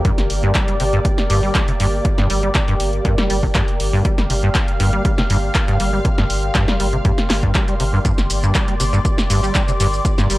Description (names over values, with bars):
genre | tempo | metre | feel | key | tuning
acid house | 120 BPM | 4/4 | straight | G minor pentatonic | A4 = 438 Hz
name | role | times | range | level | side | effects
lush unison pad | sustained chords | 0.0-10.4 s | Bb3 to F5 | -25 LUFS | equal | chorus, phaser, sidechain pumping
acid bass, saw | riff | 0.0-10.4 s | G2 to G3 | -20 LUFS | equal | tube saturation, ensemble chorus
electronic kick drum | drums | 0.0-10.2 s | none | -19 LUFS | equal | overdrive, studio ambience
punchy analog drum machine | drums | 0.0-10.4 s | handclaps, hi-hat, shaker, snare drum | -23 LUFS | equal | studio ambience
warbly tape-like pad | texture | 0.0-10.4 s | G4 to C6 | -28 LUFS | right 1 dB | chorus, built-in reverb, sidechain pumping
warm sub bass | bass | 0.2-10.4 s | G1 | -22 LUFS | equal | sidechain pumping
room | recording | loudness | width
light reverb | dry, gritty hardware recording | -15 LUFS | side -18 dB against mid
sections
0.0-10.4 A section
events
none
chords
0.0 Gm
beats
| 0.05 0.55 1.05 1.55 | 2.05 2.55 3.05 3.55 | 4.05 4.55 5.05 5.55 | 6.05 6.55 7.05 7.55 | 8.05 8.55 9.05 9.55 | 10.05